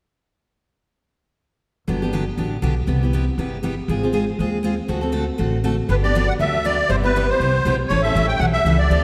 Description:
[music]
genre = acoustic string swing (jazz manouche)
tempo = 239 BPM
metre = 4/4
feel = swing 56% on 8ths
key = G major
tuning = A4 = 440 Hz
[part]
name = picked steel-string acoustic guitar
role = accompaniment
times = 1.9-9.0 s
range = C3 to A4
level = -25 LUFS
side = equal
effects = none
[part]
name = upright bass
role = bass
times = 1.9-9.0 s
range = G1 to Eb2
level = -24 LUFS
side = equal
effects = none
[part]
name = musette accordion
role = melody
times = 5.9-9.0 s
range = B4 to G5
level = -22 LUFS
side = equal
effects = none
[sound]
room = wet concert hall reverb, RT60 2.5 s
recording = none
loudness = -20 LUFS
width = mono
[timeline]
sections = 1.9-5.9 A section; 5.9-9.0 B section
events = none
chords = 1.9 Gmaj7; 2.9 Cmaj7; 3.9 Ab6; 4.9 D7; 5.9 Gmaj7; 6.9 Cmaj7/G; 7.9 A7

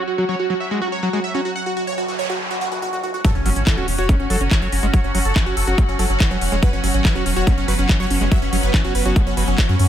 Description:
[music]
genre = psychedelic trance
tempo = 142 BPM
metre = 4/4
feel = straight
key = unclear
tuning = A4 = 439 Hz
[part]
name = supersaw stab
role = melody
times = 0.0-9.9 s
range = C#4 to F#5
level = -24 LUFS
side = right 2 dB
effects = phaser, sidechain pumping, digital delay
[part]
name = overtone-sweeping drone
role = sustained chords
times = 0.0-9.9 s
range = F#3 to F#4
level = -28 LUFS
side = right 1 dB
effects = chorus, built-in reverb, sidechain pumping
[part]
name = screaming distorted acid line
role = riff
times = 0.0-9.8 s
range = E3 to F#4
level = -26 LUFS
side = equal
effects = distortion, chorus, auto-pan, cassette tape, sidechain pumping, tape echo
[part]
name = clear studio string section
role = texture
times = 0.0-9.9 s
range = C#4 to F#5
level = -29 LUFS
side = equal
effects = sidechain pumping
[part]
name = noise sweep and impact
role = sound effects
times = 1.8-4.9 s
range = none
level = -28 LUFS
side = left 1 dB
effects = none
[part]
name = drum and bass drum kit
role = drums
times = 3.2-9.9 s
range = handclaps, hi-hat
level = -26 LUFS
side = left 1 dB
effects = none
[part]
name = electronic kick drum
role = drums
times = 3.2-9.7 s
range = none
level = -16 LUFS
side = equal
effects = none
[part]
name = round analog bass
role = bass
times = 3.4-9.9 s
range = E1 to F#2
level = -21 LUFS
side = equal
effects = none
[sound]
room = digital ambience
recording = low-pass filter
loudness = -16 LUFS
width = side -10 dB against mid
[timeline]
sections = 0.0-3.2 A section; 3.2-9.9 B section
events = filter sweep on acid bass 0.0-3.2; break 1.6-3.2; noise sweep 1.8-3.2; drop 3.2-9.9; impact 3.2-4.9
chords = 0.0 F#5

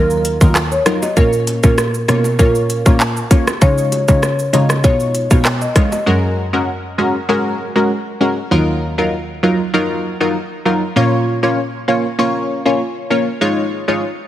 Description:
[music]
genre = dancehall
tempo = 98 BPM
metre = 4/4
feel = straight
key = Eb minor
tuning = A4 = 440 Hz
[part]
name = marimba with medium mallets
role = melody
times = 0.0-6.0 s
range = Bb4 to Eb5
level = -19 LUFS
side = equal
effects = tape echo
[part]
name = punchy chord stab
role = accompaniment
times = 0.0-14.0 s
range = Gb3 to Db5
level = -17 LUFS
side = equal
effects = chorus
[part]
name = rich cello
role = bass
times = 0.0-13.4 s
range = Eb2 to Db3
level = -18 LUFS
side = equal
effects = none
[part]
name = island pop drum kit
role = drums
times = 0.1-6.1 s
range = handclaps, hi-hat, kick drum, rim click, shaker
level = -14 LUFS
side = equal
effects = overdrive
[part]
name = bongos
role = percussion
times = 0.9-6.1 s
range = none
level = -28 LUFS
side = right 1 dB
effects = none
[sound]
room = light reverb, small room ambience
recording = heavily compressed radio sound, multiband compression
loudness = -13 LUFS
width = side -12 dB against mid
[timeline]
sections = 0.0-6.1 A section; 6.1-14.3 B section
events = none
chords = 0.0 Ebmadd9; 1.2 Bbm; 3.6 Dbadd9; 6.1 Gbadd9; 8.5 Ebmadd9; 11.0 Bbm; 13.4 Dbadd9

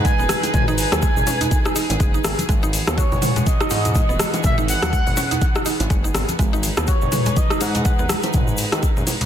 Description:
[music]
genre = afro house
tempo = 123 BPM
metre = 4/4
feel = swing 58% on 16ths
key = G# minor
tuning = A4 = 441 Hz
[part]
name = expressive synth lead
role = melody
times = 0.0-8.1 s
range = C#5 to G#5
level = -26 LUFS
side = equal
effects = lush chorus, dub echo
[part]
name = rich chamber string section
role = sustained chords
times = 0.0-9.3 s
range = E3 to B4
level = -28 LUFS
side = right 1 dB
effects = sidechain pumping
[part]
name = smooth synth bass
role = bass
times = 0.0-9.0 s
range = D#1 to G#2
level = -25 LUFS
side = equal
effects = sidechain pumping
[part]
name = deep house drum kit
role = drums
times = 0.0-9.3 s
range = hi-hat, rim click, toms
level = -24 LUFS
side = left 1 dB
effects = overdrive
[part]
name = mallet-like synth pluck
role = arpeggios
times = 0.1-8.2 s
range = F#3 to F#4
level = -28 LUFS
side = right 2 dB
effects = chorus, sidechain pumping, dub echo
[part]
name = electronic kick drum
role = drums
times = 0.1-8.9 s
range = none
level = -20 LUFS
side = equal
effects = none
[part]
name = egg shaker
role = percussion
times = 0.1-9.3 s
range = none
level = -31 LUFS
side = left 4 dB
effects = none
[part]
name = congas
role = percussion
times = 0.2-9.3 s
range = none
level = -28 LUFS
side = left 1 dB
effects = none
[part]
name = bongos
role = percussion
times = 0.4-9.2 s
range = none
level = -31 LUFS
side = right 4 dB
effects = none
[sound]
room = light reverb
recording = dense, heavily limited modern master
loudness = -17 LUFS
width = side -10 dB against mid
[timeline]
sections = 0.0-9.3 A section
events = none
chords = 0.0 G#m7; 2.5 Eadd9; 6.4 G#m7

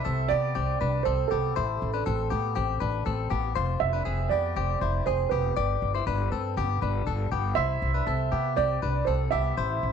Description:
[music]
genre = jangly indie pop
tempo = 120 BPM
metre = 4/4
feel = straight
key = C major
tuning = A4 = 440 Hz
[part]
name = dark upright piano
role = melody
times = 0.0-9.9 s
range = A4 to E5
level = -29 LUFS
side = right 13 dB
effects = slapback echo
[part]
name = direct-recorded clean electric guitar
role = arpeggios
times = 0.0-9.9 s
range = B3 to D5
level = -30 LUFS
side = left 10 dB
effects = spring reverb, slapback echo
[part]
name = upright bass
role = bass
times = 0.1-9.9 s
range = F1 to C3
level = -28 LUFS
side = equal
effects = none
[sound]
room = light reverb, small room ambience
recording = 1960s-style stereo with parts hard left and right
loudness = -24 LUFS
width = side -7 dB against mid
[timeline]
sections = 0.0-9.9 A section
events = none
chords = 0.0 C; 1.6 Am; 3.6 Fmadd9; 5.6 G; 7.6 C

